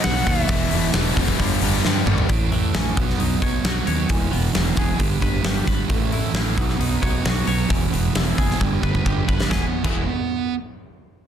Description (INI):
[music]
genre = quiet-loud alternative rock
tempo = 133 BPM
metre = 4/4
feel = straight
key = unclear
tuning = A4 = 440 Hz
[part]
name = lightly driven lead guitar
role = melody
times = 0.0-0.9 s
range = E5 to F#5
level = -26 LUFS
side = left 1 dB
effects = slapback echo
[part]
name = biting overdriven guitar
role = riff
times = 0.0-2.3 s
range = E2 to B3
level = -30 LUFS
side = equal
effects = spring reverb
[part]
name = distorted electric guitar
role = riff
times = 0.0-2.3 s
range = E2 to B3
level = -27 LUFS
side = left 13 dB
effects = overdrive
[part]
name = thick fuzz guitar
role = riff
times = 0.0-10.5 s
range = E2 to B3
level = -25 LUFS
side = right 10 dB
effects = distortion
[part]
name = huge arena drum kit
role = drums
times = 0.0-9.9 s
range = crash cymbal, hi-hat, kick drum, snare drum, toms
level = -22 LUFS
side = equal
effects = none
[part]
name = fuzz fingered electric bass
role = bass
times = 0.1-10.1 s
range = E1 to G2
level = -24 LUFS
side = equal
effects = overdrive
[part]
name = twangy electric guitar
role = arpeggios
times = 2.3-10.0 s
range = A2 to C#5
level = -29 LUFS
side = left 4 dB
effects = wide subtle chorus, slapback echo
[sound]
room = light reverb, small room ambience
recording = dense, heavily limited modern master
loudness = -18 LUFS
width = side -9 dB against mid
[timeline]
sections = 0.0-2.3 A section; 2.3-9.5 B section; 9.5-11.3 C section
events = drum fill 1.8-2.3, 8.6-9.5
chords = 0.5 E5; 1.4 G5; 2.3 A; 3.0 Badd9; 4.1 E; 5.0 G; 5.9 A5; 6.6 Badd9; 7.7 E; 8.6 G; 9.5 E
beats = 0.05 | 0.50 0.94 1.39 1.84 | 2.29 2.74 3.19 3.65 | 4.10 4.55 5.00 5.45 | 5.91 6.36 6.81 7.26 | 7.71 8.16 8.61 9.06 | 9.51 9.96 10.40